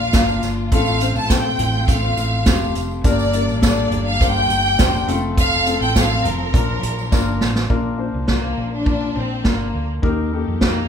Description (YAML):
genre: piano-driven pop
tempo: 103 BPM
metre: 4/4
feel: straight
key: Bb major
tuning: A4 = 438 Hz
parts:
  - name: warm symphonic violin section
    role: melody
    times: 0.0-10.9 s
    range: Bb3 to A5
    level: -21 LUFS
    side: equal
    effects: none
  - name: warm upright piano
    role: accompaniment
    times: 0.0-10.9 s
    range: G2 to C5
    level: -23 LUFS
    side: left 4 dB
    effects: none
  - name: warm studio string section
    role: sustained chords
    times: 0.0-10.9 s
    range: Eb3 to A4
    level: -31 LUFS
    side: left 1 dB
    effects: none
  - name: hollow-body short-scale fingered electric bass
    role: bass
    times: 0.0-10.9 s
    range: F1 to F2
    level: -24 LUFS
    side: right 1 dB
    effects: none
  - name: unplugged drum kit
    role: drums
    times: 0.1-10.7 s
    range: hi-hat, kick drum, snare drum, toms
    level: -19 LUFS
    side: right 1 dB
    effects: none
  - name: tambourine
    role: percussion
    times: 0.1-7.6 s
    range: none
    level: -36 LUFS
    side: right 6 dB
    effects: none
room: moderate large studio reverb, RT60 0.8 s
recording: band playing live in one room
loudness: -16 LUFS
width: side -8 dB against mid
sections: 0.0-7.7 A section; 7.7-10.9 B section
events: drum fill 7.1-7.7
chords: 0.0 Bb; 0.7 F/A; 3.0 Gm; 5.1 F; 6.5 Bb; 10.0 Eb